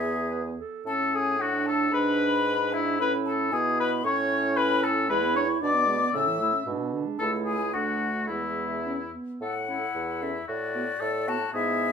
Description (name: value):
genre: quick classical-period movement for wind quintet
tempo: 113 BPM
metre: 2/4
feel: rubato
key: A major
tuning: A4 = 440 Hz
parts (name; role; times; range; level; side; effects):
- silver concert flute; melody; 0.0-11.9 s; D5 to E6; -32 LUFS; left 9 dB; none
- warm oboe; second line; 0.0-11.9 s; E4 to E5; -27 LUFS; left 3 dB; none
- dark French horn; accompaniment; 0.0-11.9 s; G#2 to E4; -33 LUFS; right 1 dB; none
- mellow clarinet; accompaniment; 0.0-11.9 s; B3 to B4; -33 LUFS; right 8 dB; none
- mellow bassoon; bass; 0.0-11.9 s; C#2 to B2; -32 LUFS; right 3 dB; none
room: light reverb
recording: minimal, uncompressed stereo recording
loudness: -24 LUFS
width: side -7 dB against mid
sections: 0.9-9.4 A section; 9.4-11.9 B section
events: none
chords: 0.0 E; 0.9 A; 1.4 D/A; 1.9 G#dim; 3.0 A; 3.5 E/B; 4.0 A; 5.1 E7; 6.1 A; 6.7 G#dim; 7.2 A/C#; 7.7 D; 8.3 E; 9.4 A; 10.5 Bm7/A